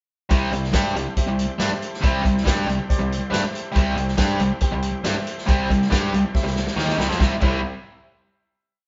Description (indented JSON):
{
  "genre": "classic rock",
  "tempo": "139 BPM",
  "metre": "4/4",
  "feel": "straight",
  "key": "C major",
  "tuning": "A4 = 444 Hz",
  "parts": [
    { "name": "clear concert grand piano", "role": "accompaniment", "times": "0.3-7.6 s", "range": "G4 to G5", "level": "-35 LUFS", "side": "equal", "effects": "none" },
    { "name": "tonewheel organ", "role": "sustained chords", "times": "0.3-7.5 s", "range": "C4 to C5", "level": "-40 LUFS", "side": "equal", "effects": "none" },
    { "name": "distorted electric guitar", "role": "riff", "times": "0.3-7.6 s", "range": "C3 to G4", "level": "-30 LUFS", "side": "equal", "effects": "distortion" },
    { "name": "overdriven electric guitar", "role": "riff", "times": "0.3-7.6 s", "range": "C3 to G4", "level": "-28 LUFS", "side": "equal", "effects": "spring reverb" },
    { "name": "fuzz picked electric bass", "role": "bass", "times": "0.3-7.6 s", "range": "C2 to G2", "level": "-29 LUFS", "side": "equal", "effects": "overdrive" },
    { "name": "vintage drum kit", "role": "drums", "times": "0.3-7.5 s", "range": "crash cymbal, hi-hat, kick drum, snare drum, tambourine", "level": "-25 LUFS", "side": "equal", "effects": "none" }
  ],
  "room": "moderate stone room reverb, RT60 1.1 s",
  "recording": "band playing live in one room, nothing above 7.6 kHz",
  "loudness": "-22 LUFS",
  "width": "mono",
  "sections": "0.3-7.2 riff; 7.2-8.9 final chord",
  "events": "drum fill 6.3-7.2",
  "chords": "0.3 C"
}